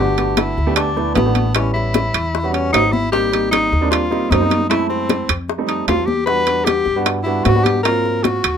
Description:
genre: Afro-Cuban jazz.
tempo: 152 BPM.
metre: 4/4.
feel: straight.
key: unclear.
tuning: A4 = 440 Hz.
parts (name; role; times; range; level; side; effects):
breathy tenor saxophone; melody; 0.0-8.6 s; B3 to B4; -19 LUFS; left 3 dB; none.
warm concert grand piano; accompaniment; 0.0-8.4 s; Gb3 to G4; -21 LUFS; right 4 dB; none.
upright bass; bass; 0.0-8.6 s; G1 to Ab2; -22 LUFS; equal; none.
bongos; percussion; 0.2-8.6 s; none; -24 LUFS; left 7 dB; none.
congas; percussion; 0.2-8.6 s; none; -24 LUFS; left 4 dB; none.
timbales; percussion; 0.2-8.6 s; none; -21 LUFS; right 8 dB; none.
room: light reverb.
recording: minimal, uncompressed stereo recording.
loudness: -15 LUFS.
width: side -8 dB against mid.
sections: 0.0-8.6 A section.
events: none.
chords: 0.0 Gmaj9; 1.6 A9; 3.1 Abmaj9; 4.7 F#m7b5; 5.5 F9; 6.3 Em9; 7.9 Ab13.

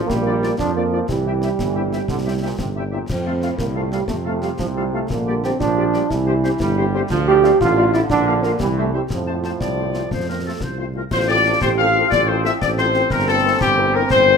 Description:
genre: military-style march for wind band.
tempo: 120 BPM (dotted quarters).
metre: 6/8.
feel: straight.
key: F major.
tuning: A4 = 440 Hz.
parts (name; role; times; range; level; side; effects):
bright trombone section; sustained chords; 0.0-14.4 s; A2 to C4; -28 LUFS; right 3 dB; none.
warm euphonium; second line; 0.1-14.4 s; F3 to G4; -21 LUFS; right 4 dB; none.
mellow tuba; bass; 0.1-14.4 s; G1 to F2; -23 LUFS; right 2 dB; none.
concert snare drum, concert bass drum and clash cymbals; drums; 0.1-14.3 s; none; -28 LUFS; left 2 dB; none.
mellow trumpet section; melody; 0.3-14.4 s; G4 to G5; -21 LUFS; left 3 dB; none.
warm woodwind section; second line; 0.3-14.4 s; F4 to A5; -24 LUFS; left 5 dB; none.
mellow French horn section; accompaniment; 0.3-14.3 s; F3 to Bb4; -28 LUFS; left 6 dB; none.
room: moderate large studio reverb, RT60 1.2 s.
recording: none.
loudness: -16 LUFS.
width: side -6 dB against mid.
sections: 0.0-11.1 A section; 11.1-14.4 B section.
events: none.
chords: 0.1 Bb; 1.1 C; 3.1 F; 5.1 Gm/Bb; 6.1 C; 7.1 Dm; 8.1 Bb; 8.6 C; 9.1 F; 11.1 F/A; 13.1 C7/G.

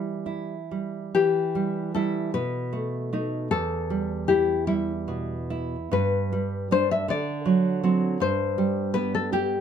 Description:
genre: romantic duo for nylon-string guitar and classical guitar.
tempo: 51 BPM (dotted quarters).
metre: 6/8.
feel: uneven beats, rubato.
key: E minor.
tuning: A4 = 440 Hz.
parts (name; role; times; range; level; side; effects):
nylon-string guitar; melody; 0.0-9.6 s; E4 to E5; -26 LUFS; left 7 dB; none.
nylon-string guitar; accompaniment; 0.0-9.6 s; E2 to G4; -26 LUFS; right 4 dB; none.
room: wet small room ambience, RT60 0.5 s.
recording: none.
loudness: -23 LUFS.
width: side -8 dB against mid.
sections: 0.0-1.1 A section; 1.1-9.6 A section.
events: none.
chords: 0.0 Em; 2.3 B7; 3.5 Em; 5.9 G; 7.1 D7; 8.2 G.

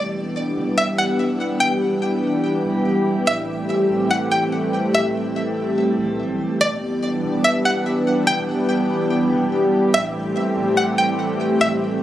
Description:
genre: hip hop, atmospheric cloud-rap.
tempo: 144 BPM.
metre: 4/4.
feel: half-time.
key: unclear.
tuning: A4 = 441 Hz.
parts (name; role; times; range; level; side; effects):
string-like resonator pluck; melody; 0.0-12.0 s; D5 to G5; -23 LUFS; equal; chorus, digital delay.
warm analog pad; sustained chords; 0.0-12.0 s; E3 to G4; -19 LUFS; equal; chorus.
soft 808-style bass; bass; 0.0-12.0 s; E1 to B1; -36 LUFS; right 1 dB; none.
room: moderate shimmer reverb, RT60 4.2 s.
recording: recorded on a phone in the room, club reverb.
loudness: -17 LUFS.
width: side -12 dB against mid.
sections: 0.0-6.6 A section; 6.6-12.0 B section.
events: none.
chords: 0.0 Em7; 3.3 Am7; 6.6 Em7; 9.9 Am7.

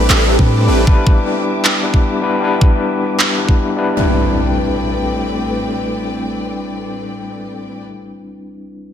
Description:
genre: future bass.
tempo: 155 BPM.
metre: 4/4.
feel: half-time.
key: A minor.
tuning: A4 = 441 Hz.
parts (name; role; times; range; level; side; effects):
overdriven tine electric piano; accompaniment; 0.0-8.9 s; G3 to B4; -19 LUFS; left 3 dB; fast tremolo, sidechain pumping, digital delay.
rich symphonic string section; sustained chords; 0.0-7.8 s; A2 to D6; -24 LUFS; left 1 dB; sidechain pumping, low-pass filter.
supersaw chords; riff; 0.0-0.8 s; A3 to B4; -20 LUFS; right 2 dB; phaser, sidechain pumping, digital delay.
warm 808-style bass; bass; 0.0-0.9 s; A1 to A2; -14 LUFS; equal; sidechain pumping.
electronic handclaps; drums; 0.1-3.3 s; none; -16 LUFS; right 1 dB; none.
electronic kick drum; drums; 0.4-3.6 s; none; -12 LUFS; equal; none.
impact; sound effects; 4.0-7.9 s; none; -21 LUFS; equal; none.
room: light reverb.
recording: none.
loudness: -13 LUFS.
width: side -9 dB against mid.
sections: 0.0-4.0 A section; 4.0-7.1 B section.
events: filter sweep on string section 0.0-4.0.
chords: 0.0 Am11; 0.9 Em7; 4.0 Am11.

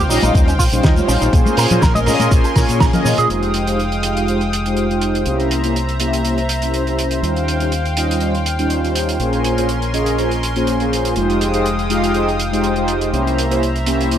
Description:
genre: nu-disco, nu disco.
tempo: 122 BPM.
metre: 4/4.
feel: swing 54% on 16ths.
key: F minor.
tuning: A4 = 440 Hz.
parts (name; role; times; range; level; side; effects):
lush unison pad; sustained chords; 0.0-14.2 s; Ab3 to Eb6; -22 LUFS; equal; chorus, sidechain pumping.
fingered electric bass with an envelope filter; bass; 0.0-14.2 s; F1 to Bb2; -21 LUFS; equal; sidechain pumping.
mellow synth brass; accompaniment; 0.1-14.2 s; G3 to F5; -19 LUFS; equal; chorus, sidechain pumping, tape echo.
electric guitar with an envelope filter; riff; 0.1-3.3 s; Db4 to Bb5; -22 LUFS; right 4 dB; analog chorus, low-pass filter, tape echo.
damped 70s drum kit; drums; 0.1-14.2 s; hi-hat, shaker, snare drum; -23 LUFS; right 2 dB; none.
congas; percussion; 0.2-3.0 s; none; -22 LUFS; left 2 dB; none.
electronic kick drum; drums; 0.3-2.9 s; none; -15 LUFS; equal; none.
room: light reverb, studio reverb.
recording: dry, gritty hardware recording.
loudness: -14 LUFS.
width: side -10 dB against mid.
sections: 0.0-3.3 A section; 3.3-14.2 B section.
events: band accent 2.8.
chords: 0.0 Eb13; 1.3 Bbm9; 3.3 Fm9; 5.3 C7b9; 7.2 Eb13; 9.2 Bbm9; 11.2 Fm9; 13.1 C7b9.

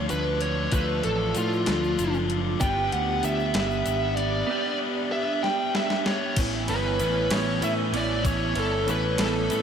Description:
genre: indie rock.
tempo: 64 BPM (dotted quarters).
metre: 6/8.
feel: straight.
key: A mixolydian.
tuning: A4 = 440 Hz.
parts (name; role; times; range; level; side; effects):
smooth overdriven lead guitar; melody; 0.0-9.6 s; F4 to G5; -27 LUFS; equal; ping-pong delay.
electric guitar through a small old amp; riff; 0.0-9.6 s; E3 to G4; -30 LUFS; right 4 dB; analog chorus, ping-pong delay.
overdriven electric guitar; riff; 0.0-9.6 s; A2 to B4; -32 LUFS; left 7 dB; none.
picked electric bass; bass; 0.0-9.6 s; F#1 to A2; -29 LUFS; left 1 dB; none.
crisp 8-bit digital drum machine; drums; 0.1-9.6 s; crash cymbal, hi-hat, kick drum, ride cymbal, snare drum; -31 LUFS; left 1 dB; overdrive.
egg shaker; percussion; 0.1-9.6 s; none; -43 LUFS; left 19 dB; none.
glockenspiel with rubber mallets; second line; 6.7-9.6 s; A5 to E6; -36 LUFS; right 6 dB; none.
room: wet cathedral reverb, RT60 5.4 s.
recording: dreamy mix soaked in reverb.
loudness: -23 LUFS.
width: side -7 dB against mid.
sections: 0.0-6.4 A section; 6.4-9.6 B section.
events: lead electric guitar solo 0.0-6.4; drum fill 5.4-6.4.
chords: 0.0 Dm; 2.6 G; 6.4 Aadd9.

